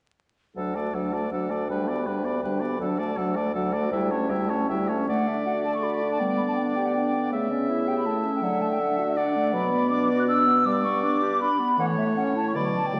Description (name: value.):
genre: quick classical-period movement for wind quintet.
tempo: 160 BPM.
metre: 3/4.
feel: rubato.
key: D major.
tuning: A4 = 440 Hz.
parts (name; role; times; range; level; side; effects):
mellow hollow silver concert flute; melody; 0.6-13.0 s; D5 to F#6; -30 LUFS; equal; none.
warm oboe; second line; 0.6-13.0 s; A4 to E5; -35 LUFS; equal; none.
dark French horn; accompaniment; 0.6-13.0 s; F#3 to B3; -32 LUFS; equal; none.
warm clarinet; accompaniment; 0.6-13.0 s; D3 to A4; -33 LUFS; equal; none.
mellow bassoon; bass; 0.6-13.0 s; D2 to D3; -31 LUFS; equal; none.
room: wet scoring stage reverb, RT60 1.8 s.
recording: heard from further back in the room, vinyl crackle, nothing above 10.7 kHz.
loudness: -25 LUFS.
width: mono.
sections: 0.6-5.1 A section; 5.1-13.0 B section.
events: none.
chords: 0.6 D; 1.7 G/D; 2.8 D; 3.9 A7/D; 5.1 D; 6.2 G/D; 7.3 A7/C#; 8.4 D; 9.5 Bm; 10.7 G; 11.8 A; 12.6 Bm.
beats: | 0.56 0.94 1.32 | 1.69 2.07 2.43 | 2.80 3.17 3.54 | 3.92 4.29 4.69 | 5.08 5.45 5.83 | 6.20 6.58 6.95 | 7.32 7.69 8.06 | 8.43 8.79 9.16 | 9.53 9.90 10.28 | 10.66 11.03 11.41 | 11.79 12.17 12.55 | 12.95.